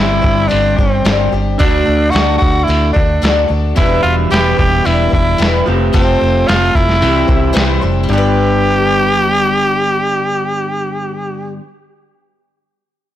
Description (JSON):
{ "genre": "folk rock and heartland rock", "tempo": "111 BPM", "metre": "4/4", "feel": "straight", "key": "G major", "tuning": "A4 = 445 Hz", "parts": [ { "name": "raspy tenor saxophone", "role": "melody", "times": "0.0-11.5 s", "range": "C4 to G4", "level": "-16 LUFS", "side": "right 1 dB", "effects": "none" }, { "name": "picked twelve-string acoustic guitar", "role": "accompaniment", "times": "0.0-11.7 s", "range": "C3 to C5", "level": "-20 LUFS", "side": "left 4 dB", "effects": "none" }, { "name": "electric guitar through a small old amp", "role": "riff", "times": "0.0-11.6 s", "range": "E2 to G4", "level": "-18 LUFS", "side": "equal", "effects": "none" }, { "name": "vintage muted fingered electric bass", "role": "bass", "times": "0.0-11.5 s", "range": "E1 to D2", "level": "-17 LUFS", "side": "equal", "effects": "transformer saturation" }, { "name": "lo-fi sampler-style drum kit", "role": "drums", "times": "0.2-7.7 s", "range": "hi-hat, kick drum, snare drum", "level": "-16 LUFS", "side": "equal", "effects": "none" } ], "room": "light reverb, digital ambience", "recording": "blown-out, overdriven recording, overdrive", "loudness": "-11 LUFS", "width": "side -12 dB against mid", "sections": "0.0-8.1 A section; 8.1-12.4 B section", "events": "break 7.8", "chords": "0.0 Gsus4; 1.6 D; 3.8 Em7; 5.7 Fadd9; 7.0 C; 8.1 G" }